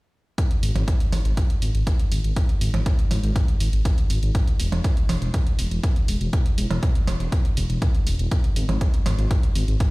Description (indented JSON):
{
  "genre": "melodic techno",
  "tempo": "121 BPM",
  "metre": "4/4",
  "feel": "straight",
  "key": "unclear",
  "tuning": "A4 = 440 Hz",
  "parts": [
    { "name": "electronic hi-hat and percussion blips", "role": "drums", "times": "0.4-9.9 s", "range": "none", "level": "-31 LUFS", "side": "right 2 dB", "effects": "none" },
    { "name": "electronic kick drum", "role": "drums", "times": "0.4-9.9 s", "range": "none", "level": "-21 LUFS", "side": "equal", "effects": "none" },
    { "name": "swelling detuned saw bass", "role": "bass", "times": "0.6-9.8 s", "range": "E1 to G#1", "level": "-22 LUFS", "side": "equal", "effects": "sidechain pumping" }
  ],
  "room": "little or no reverb",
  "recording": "played on a big sound system in a bare room, stone room reverb",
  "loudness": "-20 LUFS",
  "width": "side -23 dB against mid",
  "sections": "0.4-9.9 A section",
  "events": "none",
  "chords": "none",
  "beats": "| 0.38 0.88 1.37 1.87 | 2.37 2.86 3.36 3.85 | 4.35 4.84 5.34 5.84 | 6.33 6.83 7.32 7.82 | 8.31 8.81 9.31 9.80"
}